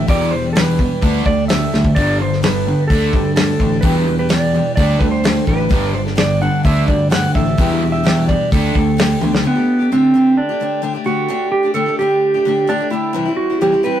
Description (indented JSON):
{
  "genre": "folk rock and heartland rock",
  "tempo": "128 BPM",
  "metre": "4/4",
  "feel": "straight",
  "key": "unclear",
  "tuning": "A4 = 440 Hz",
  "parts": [
    { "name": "clean lap steel guitar", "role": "melody", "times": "0.0-14.0 s", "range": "B3 to F#5", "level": "-18 LUFS", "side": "right 2 dB", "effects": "none" },
    { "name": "picked steel-string acoustic guitar", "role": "accompaniment", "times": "0.0-14.0 s", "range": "E2 to A4", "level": "-22 LUFS", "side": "left 5 dB", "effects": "none" },
    { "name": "overdriven semi-hollow guitar", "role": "riff", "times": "0.0-9.4 s", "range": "E2 to D4", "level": "-20 LUFS", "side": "right 1 dB", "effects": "none" },
    { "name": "fingered electric bass", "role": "bass", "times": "0.0-9.4 s", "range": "G1 to G2", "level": "-19 LUFS", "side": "equal", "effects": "none" },
    { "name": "damped 70s drum kit", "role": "drums", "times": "0.1-9.4 s", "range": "hi-hat, kick drum, snare drum, toms", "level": "-18 LUFS", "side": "equal", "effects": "none" }
  ],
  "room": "moderate studio reverb, RT60 0.6 s",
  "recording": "rough rehearsal-room recording, warm saturation",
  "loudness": "-13 LUFS",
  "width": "side -10 dB against mid",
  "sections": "0.0-9.4 A section; 9.4-14.0 B section",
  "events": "drum fill 1.7, 9.2",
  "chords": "0.1 Em7; 1.0 Dsus4; 2.0 Gadd9; 2.9 Dsus4; 3.8 Em7; 4.8 Dsus4; 5.7 Gadd9; 6.6 Dsus4; 7.6 Em7; 8.5 Dsus4; 13.2 C"
}